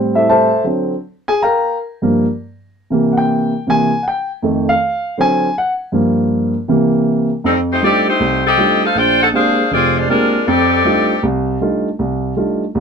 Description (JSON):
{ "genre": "jazz", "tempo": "159 BPM", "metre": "4/4", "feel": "swing 66% on 8ths", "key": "F major from 7.4 s", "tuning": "A4 = 440 Hz", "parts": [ { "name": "dark grand piano", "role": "accompaniment", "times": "0.0-12.8 s", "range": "F1 to Bb5", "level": "-14 LUFS", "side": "right 1 dB", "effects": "none" }, { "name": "clear saxophone section", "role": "melody", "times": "7.5-11.2 s", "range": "G3 to G5", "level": "-13 LUFS", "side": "left 2 dB", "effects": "none" } ], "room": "light reverb", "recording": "close, detailed microphones", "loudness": "-13 LUFS", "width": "side -6 dB against mid", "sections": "0.0-7.4 A section; 7.4-12.8 B section", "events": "grand piano solo 0.0-7.4", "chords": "0.0 Am7; 0.6 D7#11; 1.4 Gm7; 2.9 C7; 4.4 F7; 5.2 D7; 5.9 Gm7; 6.7 C7; 7.4 F13; 8.9 Bb13; 10.5 F13" }